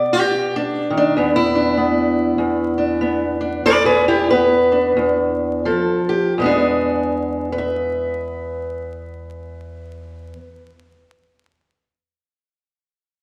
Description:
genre	acoustic country blues, solo or duo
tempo	84-98 BPM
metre	4/4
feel	swing 61% on 8ths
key	E mixolydian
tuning	A4 = 445 Hz
part	fingerpicked steel-string acoustic guitar	solo	0.0-10.7 s	E2 to E5	-19 LUFS	equal	none
room	wet recital hall reverb, RT60 1.5 s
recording	recorded in a church or concert hall, vinyl crackle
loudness	-18 LUFS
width	mono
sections	0.0-6.4 A section; 6.4-9.2 B section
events	steel-string acoustic guitar solo 0.0-6.4; slowing down 1.2-6.4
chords	0.0 B; 1.2 E7(no3); 5.7 Fadd9; 6.4 E7

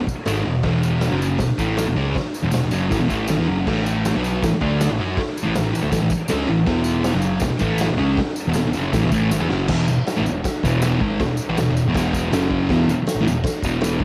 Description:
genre	garage rock duo or trio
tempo	159 BPM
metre	4/4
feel	straight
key	E mixolydian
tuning	A4 = 439 Hz
part	fuzz guitar	riff	0.0-14.0 s	E2 to F#4	-22 LUFS	equal	distortion, cassette tape
part	growling picked electric bass	bass	0.0-14.0 s	E1 to F#2	-31 LUFS	equal	overdrive
part	raw garage drum kit	drums	0.1-14.0 s	crash cymbal, hi-hat, kick drum, snare drum	-27 LUFS	equal	none
part	tambourine	percussion	0.1-13.9 s	none	-39 LUFS	equal	none
room	light reverb, small room ambience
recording	home recording on cassette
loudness	-20 LUFS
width	mono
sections	0.0-9.7 A section; 9.7-14.0 B section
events	drum fill 9.3-9.7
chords	0.0 E; 3.7 A5; 6.7 E; 12.3 F#5; 12.7 E5

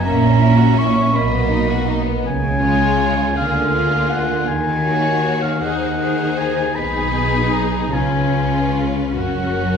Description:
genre	classical, slow romantic movement for symphony orchestra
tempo	48-55 BPM (dotted quarters)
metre	6/8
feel	rubato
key	F# major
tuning	A4 = 440 Hz
part	rich symphonic violin section	melody	0.0-9.8 s	G#4 to E5	-28 LUFS	left 4 dB	none
part	rich studio violin section	second line	0.0-9.8 s	A#3 to G#4	-26 LUFS	left 3 dB	none
part	warm oboe	second line	0.0-9.8 s	E#5 to C#6	-21 LUFS	equal	none
part	rich symphonic cello section	bass	0.0-9.8 s	F#2 to D#3	-22 LUFS	equal	none
part	rich symphonic viola section	accompaniment	0.1-9.8 s	G#3 to D#4	-23 LUFS	equal	none
part	warm symphonic double bass section	bass	0.1-9.8 s	F#1 to D#2	-21 LUFS	right 2 dB	none
room	wet recital hall reverb, RT60 1.6 s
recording	heard from further back in the room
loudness	-15 LUFS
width	side -6 dB against mid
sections	0.0-9.8 A section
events	none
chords	0.1 F#7/A# (rootless); 1.1 Bmaj7; 2.3 C#; 3.4 A#7/D; 4.5 D#m7; 5.6 G#7/D#; 6.8 G#m/B; 7.9 C#7; 9.2 F#

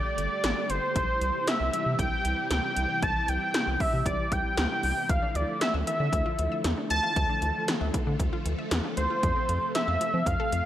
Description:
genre	synth-pop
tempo	116 BPM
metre	4/4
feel	straight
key	C major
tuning	A4 = 436 Hz
part	octave-doubled lead	melody	0.0-10.7 s	C5 to A5	-28 LUFS	equal	chorus, slapback echo
part	string machine, violas	sustained chords	0.0-10.7 s	C3 to A4	-35 LUFS	equal	ensemble chorus
part	round analog bass	bass	0.2-10.6 s	G1 to F3	-30 LUFS	equal	none
part	80s electronic pad drums	drums	0.2-10.6 s	hi-hat, kick drum, snare drum	-30 LUFS	equal	gated reverb
part	wide unison pluck	arpeggios	5.1-10.6 s	E3 to F5	-37 LUFS	left 4 dB	slapback echo
room	light reverb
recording	none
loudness	-25 LUFS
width	side -12 dB against mid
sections	0.0-10.7 A section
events	none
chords	0.0 Gsus2; 1.0 C; 5.1 Dmadd9; 9.2 F

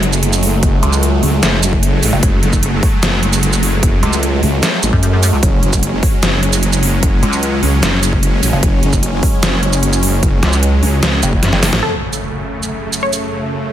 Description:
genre	heavy wobble dubstep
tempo	150 BPM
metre	4/4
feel	half-time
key	F# minor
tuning	A4 = 439 Hz
part	supersaw chords	sustained chords	0.0-13.7 s	F#2 to C#4	-19 LUFS	equal	sidechain pumping
part	wobble bass	bass	0.0-11.8 s	F#1 to F#2	-15 LUFS	equal	chorus, overdrive
part	dubstep drum kit	drums	0.0-13.2 s	hi-hat, shaker, snare drum	-18 LUFS	right 1 dB	small room ambience
part	electronic kick drum	drums	0.6-11.4 s	none	-15 LUFS	equal	small room ambience
part	pulsing pluck wobble bass	bass	0.8-11.7 s	F#1 to F#2	-13 LUFS	equal	distortion, chorus, overdrive
part	wide unison pluck	melody	11.8-13.7 s	A4 to C#5	-22 LUFS	left 1 dB	dub echo
part	impact	sound effects	11.9-13.4 s	none	-29 LUFS	equal	none
room	little or no reverb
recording	none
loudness	-11 LUFS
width	side -11 dB against mid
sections	0.0-11.8 A section; 11.8-13.7 B section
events	drop 0.0-11.8; drum fill 11.4-11.8; band accent 11.7; impact 11.8-13.4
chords	0.0 F#madd9; 11.8 F#m

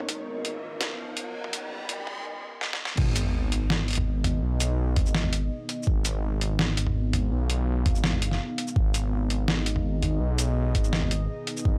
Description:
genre	half-time drum and bass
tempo	166 BPM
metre	4/4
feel	half-time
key	G# dorian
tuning	A4 = 439 Hz
part	deep dark ambient pad	sustained chords	0.0-11.8 s	B3 to E#5	-37 LUFS	equal	chorus, built-in reverb, sidechain pumping
part	dark detuned saw bass	bass	0.0-11.8 s	F#1 to B1	-29 LUFS	equal	none
part	boom bap sampler-style drum kit	drums	0.0-11.6 s	crash cymbal, hi-hat, shaker, snare drum, toms	-30 LUFS	equal	high-pass filter on hats, high-pass filter on toms, high-pass filter on snare, high-pass filter on cymbals, high-pass filter on perc
part	riser and sub drop	sound effects	0.0-4.4 s	none	-38 LUFS	equal	none
part	flickering grainy texture	texture	0.0-2.3 s	C#4 to C#5	-48 LUFS	equal	none
part	electronic kick drum	drums	0.1-11.7 s	none	-26 LUFS	equal	overdrive, high-pass filter on kick
room	little or no reverb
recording	dry, gritty hardware recording, high-pass filter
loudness	-27 LUFS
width	mono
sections	0.0-3.0 A section; 3.0-11.8 B section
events	build-up 0.0-3.0; riser 0.0-2.3; filter sweep 0.0-3.0; drum fill 2.6-3.0; drop 3.0-11.8; impact 3.0-4.4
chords	0.0 G#m

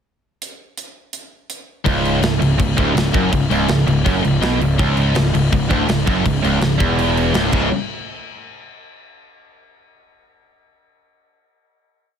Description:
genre	heavy metal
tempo	164 BPM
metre	4/4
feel	straight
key	C# phrygian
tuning	A4 = 438 Hz
part	tight metal drum kit	drums	0.4-7.6 s	crash cymbal, hi-hat, kick drum, snare drum	-22 LUFS	equal	soft clipping on kick
part	high-gain distorted guitar	riff	1.8-7.7 s	C#2 to C#3	-20 LUFS	left 8 dB	distortion
part	fuzz guitar	riff	1.9-7.7 s	C#2 to C#3	-23 LUFS	right 1 dB	distortion
part	tight distorted guitar	riff	1.9-7.7 s	C#2 to C#3	-21 LUFS	right 8 dB	distortion
part	fuzz picked electric bass	bass	1.9-7.7 s	C#1 to B1	-21 LUFS	equal	overdrive
room	little or no reverb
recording	dense, heavily limited modern master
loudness	-14 LUFS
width	side -8 dB against mid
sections	0.4-1.9 pickup bar; 1.9-7.7 riff; 7.7-9.2 final hit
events	drum fill 7.5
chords	0.4 N.C.; 1.9 C#m; 7.5 C#5; 7.7 N.C.

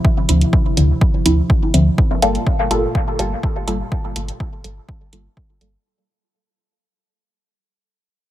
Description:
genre	dub techno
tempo	124 BPM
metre	4/4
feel	straight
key	G dorian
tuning	A4 = 440 Hz
part	warbly tape-like pad	sustained chords	0.0-5.8 s	Bb2 to F4	-27 LUFS	right 1 dB	chorus, built-in reverb, sidechain pumping
part	electronic kick drum	drums	0.0-5.5 s	none	-18 LUFS	equal	overdrive
part	filtered dub chord stab	stabs	0.3-5.7 s	D3 to A4	-19 LUFS	equal	chorus, phaser, sidechain pumping, dub echo
part	warm sub bass	bass	0.3-5.8 s	G1 to D2	-18 LUFS	equal	sidechain pumping
part	electronic hi-hat	drums	0.3-5.7 s	none	-23 LUFS	right 2 dB	none
room	digital ambience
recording	none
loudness	-14 LUFS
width	side -13 dB against mid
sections	0.0-2.0 A section; 2.0-5.9 B section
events	fade-out 2.0-5.9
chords	0.0 Dm9; 2.0 Gm9

